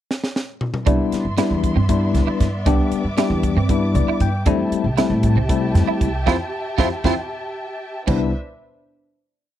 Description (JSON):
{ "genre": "electric jazz fusion", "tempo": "233 BPM (eighths)", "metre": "7/8", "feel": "straight", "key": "C major", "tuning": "A4 = 438 Hz", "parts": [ { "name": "crisp fusion drum kit", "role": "drums", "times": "0.1-8.2 s", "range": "crash cymbal, hi-hat, kick drum, snare drum, toms", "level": "-22 LUFS", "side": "right 1 dB", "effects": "none" }, { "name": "bell-like tine electric piano", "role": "accompaniment", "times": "0.9-8.3 s", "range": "G3 to G5", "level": "-21 LUFS", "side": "left 6 dB", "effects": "medium stereo tremolo" }, { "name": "dark symphonic string section", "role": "sustained chords", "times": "0.9-8.3 s", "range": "B3 to D6", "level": "-30 LUFS", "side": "equal", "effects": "none" }, { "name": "clean electric guitar", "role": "stabs", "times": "0.9-8.2 s", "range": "C4 to F4", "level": "-25 LUFS", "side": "right 13 dB", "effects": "ensemble chorus" }, { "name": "upright bass", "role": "bass", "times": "0.9-8.3 s", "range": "C2 to A2", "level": "-20 LUFS", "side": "right 1 dB", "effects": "none" } ], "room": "small room ambience", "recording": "dry, close 1970s-style studio recording", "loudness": "-17 LUFS", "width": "side -12 dB against mid", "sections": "0.0-0.9 pickup bar; 0.9-8.1 groove; 8.1-9.6 final chord", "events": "drum fill 0.1-0.9, 7.7-8.1; tine electric piano fill 3.7-4.5, 7.3-8.1; band accent 6.3-8.1", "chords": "0.0 N.C.; 0.9 Cmaj9; 4.5 Fmaj9; 8.1 Cmaj9" }